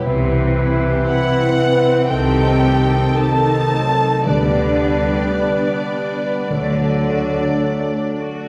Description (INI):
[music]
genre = classical, slow romantic movement for symphony orchestra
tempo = 53-60 BPM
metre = 4/4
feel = rubato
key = G major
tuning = A4 = 440 Hz
[part]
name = rich studio violin section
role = second line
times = 0.0-8.5 s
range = G3 to D5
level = -29 LUFS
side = equal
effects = none
[part]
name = warm bassoon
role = accompaniment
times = 0.0-8.4 s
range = Eb3 to G3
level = -27 LUFS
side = equal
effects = none
[part]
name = warm studio viola section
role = accompaniment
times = 0.0-8.5 s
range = A3 to E4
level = -27 LUFS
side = equal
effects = none
[part]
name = concert harp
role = arpeggios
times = 0.0-8.5 s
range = B2 to A4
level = -25 LUFS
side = equal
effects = none
[part]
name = warm clarinet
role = second line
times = 0.1-8.4 s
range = A4 to B4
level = -28 LUFS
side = equal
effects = none
[part]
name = warm French horn section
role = sustained chords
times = 0.1-8.4 s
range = Eb3 to B4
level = -26 LUFS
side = equal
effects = none
[part]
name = clear chamber cello section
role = bass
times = 0.1-7.4 s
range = C3 to D3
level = -26 LUFS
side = equal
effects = none
[part]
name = rich studio double bass section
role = bass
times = 0.1-7.4 s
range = C2 to D2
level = -27 LUFS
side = equal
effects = none
[part]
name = rich studio violin section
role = melody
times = 1.1-7.6 s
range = D5 to A5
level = -28 LUFS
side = equal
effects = none
[part]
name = mellow silver concert flute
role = second line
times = 1.1-7.6 s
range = D5 to A5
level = -27 LUFS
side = equal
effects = none
[part]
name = timpani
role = percussion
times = 4.3-8.1 s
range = D3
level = -30 LUFS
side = equal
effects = none
[sound]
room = wet scoring stage reverb, RT60 1.4 s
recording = heard from further back in the room, faint mains hum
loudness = -17 LUFS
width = mono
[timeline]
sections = 0.0-8.5 A section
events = none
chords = 0.1 Cmaj7; 2.1 Am7b5/C; 4.3 G/D; 6.5 D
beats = | 0.07 1.09 2.11 3.17 | 4.28 5.40 6.52 7.63